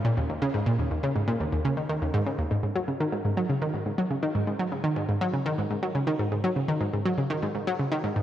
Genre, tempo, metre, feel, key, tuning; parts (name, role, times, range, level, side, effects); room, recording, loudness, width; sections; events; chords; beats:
ambient; 122 BPM; 4/4; straight; A4 = 436 Hz
analog pluck; solo; 0.0-8.2 s; Eb2 to F#3; -25 LUFS; equal; chorus, tape echo
moderate plate reverb, RT60 2.8 s; worn, warbling old tape, cassette tape, warbly pitch drift; -25 LUFS; side -11 dB against mid
0.0-2.5 A section; 2.5-8.2 B section
0.05 | 0.54 1.03 1.52 2.02 | 2.51 3.00 3.49 3.98 | 4.47 4.97 5.46 5.95 | 6.44 6.93 7.42 7.92